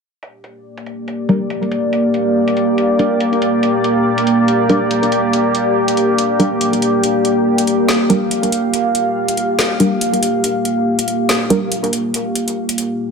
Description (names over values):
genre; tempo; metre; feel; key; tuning
deep dubstep; 141 BPM; 4/4; swing 58% on 16ths, half-time; G minor; A4 = 441 Hz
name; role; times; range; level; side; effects
deep dark ambient pad; sustained chords; 0.9-13.0 s; Bb3 to F5; -15 LUFS; equal; chorus, built-in reverb, vintage 12-bit sampler grit
garage drum kit; drums; 0.2-12.9 s; hi-hat, snare drum; -21 LUFS; equal; low-pass filter on hats, low-pass filter on snare, low-pass filter on room
filtered dub chord stab; stabs; 1.3-11.6 s; G3 to Bb4; -18 LUFS; right 1 dB; chorus, dub echo
room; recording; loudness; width
wet echo chamber reverb, RT60 1.7 s; none; -13 LUFS; side -5 dB against mid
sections
0.2-13.1 A section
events
none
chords
0.2 Gm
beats
| 0.23 0.65 1.08 1.50 | 1.93 2.35 2.78 3.21 | 3.63 4.06 4.48 4.91 | 5.33 5.76 6.18 6.61 | 7.04 7.46 7.89 8.31 | 8.74 9.16 9.59 10.01 | 10.44 10.87 11.29 11.72 | 12.14 12.57